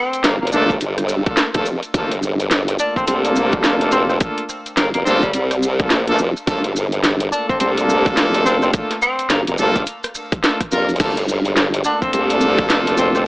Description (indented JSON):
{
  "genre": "glitch hop",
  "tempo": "106 BPM",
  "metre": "4/4",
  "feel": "swing 61% on 16ths",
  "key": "G minor",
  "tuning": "A4 = 440 Hz",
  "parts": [
    { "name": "warm tenor saxophone", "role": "melody", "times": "0.0-13.2 s", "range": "G3 to D4", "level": "-20 LUFS", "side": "equal", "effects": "digital delay" },
    { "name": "drum and bass drum kit", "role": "drums", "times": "0.1-13.2 s", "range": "crash cymbal, hi-hat, rim click, snare drum", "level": "-19 LUFS", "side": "equal", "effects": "none" },
    { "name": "maracas", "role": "percussion", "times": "0.1-13.2 s", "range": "none", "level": "-30 LUFS", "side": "right 1 dB", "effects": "none" },
    { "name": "formant-sweep wobble bass", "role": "bass", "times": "0.2-13.2 s", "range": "F1 to C2", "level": "-19 LUFS", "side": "equal", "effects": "chorus, tube saturation" },
    { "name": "brilliant horn section", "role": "stabs", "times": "0.5-13.2 s", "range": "A3 to Bb4", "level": "-20 LUFS", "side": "equal", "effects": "sidechain pumping, digital delay" },
    { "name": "electronic kick drum", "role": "drums", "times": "0.7-12.7 s", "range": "none", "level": "-20 LUFS", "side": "equal", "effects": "none" }
  ],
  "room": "light reverb",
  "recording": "AM radio sound",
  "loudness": "-15 LUFS",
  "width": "side -21 dB against mid",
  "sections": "0.0-13.3 A section",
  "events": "none",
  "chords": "0.0 Gm7",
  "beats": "0.25 0.81 1.38 | 1.94 2.51 3.08 3.64 | 4.21 4.77 5.34 5.91 | 6.47 7.04 7.60 8.17 | 8.74 9.30 9.87 10.43 | 11.00 11.57 12.13 12.70"
}